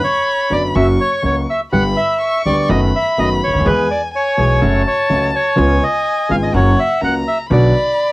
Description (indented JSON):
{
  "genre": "tango",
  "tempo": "125 BPM",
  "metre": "4/4",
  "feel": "rubato",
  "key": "B minor",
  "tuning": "A4 = 440 Hz",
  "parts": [
    { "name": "bandoneon", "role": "melody", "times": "0.0-8.1 s", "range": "B4 to F#5", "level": "-16 LUFS", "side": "equal", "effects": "cassette tape" },
    { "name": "warm violin", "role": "second line", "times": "0.0-8.1 s", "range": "F#5 to C#6", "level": "-22 LUFS", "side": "left 2 dB", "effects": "cassette tape" },
    { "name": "warm concert grand piano", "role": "accompaniment", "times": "0.5-7.7 s", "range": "G1 to G#4", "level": "-17 LUFS", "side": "equal", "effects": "cassette tape" },
    { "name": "upright bass", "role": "bass", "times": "0.5-7.7 s", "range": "F#1 to E2", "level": "-18 LUFS", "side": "equal", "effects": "none" }
  ],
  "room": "light reverb",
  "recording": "home recording on cassette",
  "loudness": "-13 LUFS",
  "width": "side -20 dB against mid",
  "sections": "0.0-8.1 A section",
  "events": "none",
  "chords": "0.0 Bm; 0.7 F#; 1.7 G; 2.7 B7/F#; 3.7 E; 4.6 F#m; 5.6 C#7; 6.5 F#; 7.5 Bm"
}